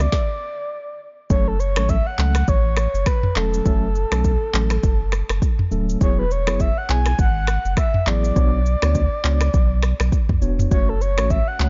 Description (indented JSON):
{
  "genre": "afrobeats",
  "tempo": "102 BPM",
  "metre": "4/4",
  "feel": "swing 58% on 16ths",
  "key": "F# minor",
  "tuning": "A4 = 440 Hz",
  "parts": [
    { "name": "breathy flute-like synth lead", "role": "melody", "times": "0.0-11.7 s", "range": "A4 to G#5", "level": "-28 LUFS", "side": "equal", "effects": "chorus, delay" },
    { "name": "mellow tine electric piano", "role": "accompaniment", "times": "0.0-11.7 s", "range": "F#3 to C#5", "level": "-30 LUFS", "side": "equal", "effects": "none" },
    { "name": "warm sub bass", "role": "bass", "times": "0.0-11.7 s", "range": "D1 to D2", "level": "-22 LUFS", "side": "equal", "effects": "none" },
    { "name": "afro-pop drum kit", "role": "drums", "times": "0.0-11.7 s", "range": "finger snaps, handclaps, kick drum, rim click, shaker, snare drum, toms", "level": "-23 LUFS", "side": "equal", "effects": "none" }
  ],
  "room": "little or no reverb",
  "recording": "dark, warm production, nothing above 7.5 kHz",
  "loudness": "-20 LUFS",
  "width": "mono",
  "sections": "0.0-1.3 A section; 1.3-11.7 B section",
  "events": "stop 0.1-1.3",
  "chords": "0.0 Bmadd9 (rootless); 1.3 F#m; 6.0 Eadd9; 8.4 Bmadd9; 10.7 F#m"
}